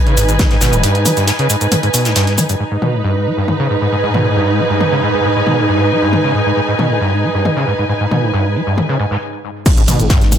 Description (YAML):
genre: driving peak-time techno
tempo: 136 BPM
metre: 4/4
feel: straight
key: G# harmonic minor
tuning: A4 = 439 Hz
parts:
  - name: dark studio string section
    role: texture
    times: 0.0-9.2 s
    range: D#4 to G#5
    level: -17 LUFS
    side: right 2 dB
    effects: sidechain pumping
  - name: overdriven acid bass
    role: riff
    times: 0.1-10.4 s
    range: G2 to G#3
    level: -17 LUFS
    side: equal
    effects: distortion, wide subtle chorus, sidechain pumping, ping-pong delay
  - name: techno drum kit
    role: drums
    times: 0.1-10.4 s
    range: crash cymbal, hi-hat, ride cymbal, shaker, toms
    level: -19 LUFS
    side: left 1 dB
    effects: sidechain pumping on hats, sidechain pumping on perc, sidechain pumping on toms, sidechain pumping on cymbals
  - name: dark detuned saw bass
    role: bass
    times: 0.2-0.8, 9.9-10.4 s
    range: D#1 to G#1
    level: -17 LUFS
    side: equal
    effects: sidechain pumping
  - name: loose indie drum kit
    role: drums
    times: 0.2-10.4 s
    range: hi-hat, snare drum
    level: -26 LUFS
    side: left 2 dB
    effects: sidechain pumping on hats, high-pass filter on hats, low-pass filter on hats, high-pass filter on snare, low-pass filter on snare, high-pass filter on room, low-pass filter on room
  - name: electronic kick drum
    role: drums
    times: 0.4-0.5, 9.7-10.2 s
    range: none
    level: -12 LUFS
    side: equal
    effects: none
  - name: swarming drone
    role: drone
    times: 3.3-10.4 s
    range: G#2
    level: -22 LUFS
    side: equal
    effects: built-in reverb, sidechain pumping
  - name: impact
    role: sound effects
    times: 9.7-10.4 s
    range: none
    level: -22 LUFS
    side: equal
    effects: none
room: moderate plate reverb, RT60 2.1 s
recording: none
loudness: -12 LUFS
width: side -9 dB against mid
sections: 0.0-2.6 A section; 2.6-9.7 B section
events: stop 9.2-9.7; impact 9.7-10.4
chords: 0.0 G#m